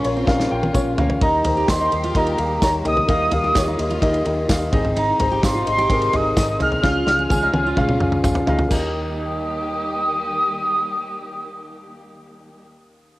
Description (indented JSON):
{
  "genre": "piano-driven pop",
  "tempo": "128 BPM",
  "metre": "4/4",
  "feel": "straight",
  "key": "Eb mixolydian",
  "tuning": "A4 = 443 Hz",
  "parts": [
    { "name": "warm velvety synth lead", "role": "melody", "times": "0.0-12.6 s", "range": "Bb5 to F6", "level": "-22 LUFS", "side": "equal", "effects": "chorus, cassette tape" },
    { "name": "dark upright piano", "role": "accompaniment", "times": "0.0-13.2 s", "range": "Eb2 to Ab5", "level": "-23 LUFS", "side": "left 1 dB", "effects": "cassette tape" },
    { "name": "warm studio string section", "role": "sustained chords", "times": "0.0-12.6 s", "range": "C3 to G4", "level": "-32 LUFS", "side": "left 1 dB", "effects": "cassette tape" },
    { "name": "fingerpicked steel-string acoustic guitar", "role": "riff", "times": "0.0-10.1 s", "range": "Bb3 to Ab4", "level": "-28 LUFS", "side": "right 4 dB", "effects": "cassette tape" },
    { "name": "vintage muted fingered electric bass", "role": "bass", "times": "0.0-12.6 s", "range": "Ab1 to Eb2", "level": "-27 LUFS", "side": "equal", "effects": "none" },
    { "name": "natural country drum kit", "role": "drums", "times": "0.0-8.8 s", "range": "crash cymbal, kick drum, ride cymbal, snare drum, toms", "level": "-22 LUFS", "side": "equal", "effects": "cassette tape" },
    { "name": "tambourine", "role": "percussion", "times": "0.7-8.9 s", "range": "none", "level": "-36 LUFS", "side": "right 4 dB", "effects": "none" }
  ],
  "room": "light reverb, small room ambience",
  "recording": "home recording on cassette",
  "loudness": "-17 LUFS",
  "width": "side -18 dB against mid",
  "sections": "0.0-8.7 A section; 8.7-12.5 B section",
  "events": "drum fill 0.3-1.2, 6.8-8.7",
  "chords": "0.0 Bbm; 1.2 Eb; 4.7 Ab; 6.8 Db; 8.7 Eb"
}